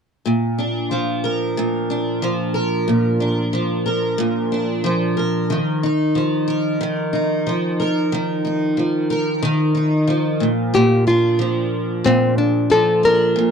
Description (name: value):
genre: pop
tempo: 92 BPM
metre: 4/4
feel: swing 60% on 16ths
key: unclear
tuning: A4 = 436 Hz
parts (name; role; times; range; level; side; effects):
- picked steel-string acoustic guitar; accompaniment; 0.3-13.5 s; Bb2 to Bb4; -18 LUFS; equal; double-tracked left and right
- nylon-string guitar; melody; 10.7-13.5 s; C4 to Bb4; -16 LUFS; left 1 dB; none
room: small room ambience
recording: dry, close 1970s-style studio recording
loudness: -17 LUFS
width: side -6 dB against mid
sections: 0.3-10.7 A section; 10.7-13.5 B section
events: none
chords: 0.3 Bb; 5.5 Ebsus2; 10.4 N.C.; 10.7 Bb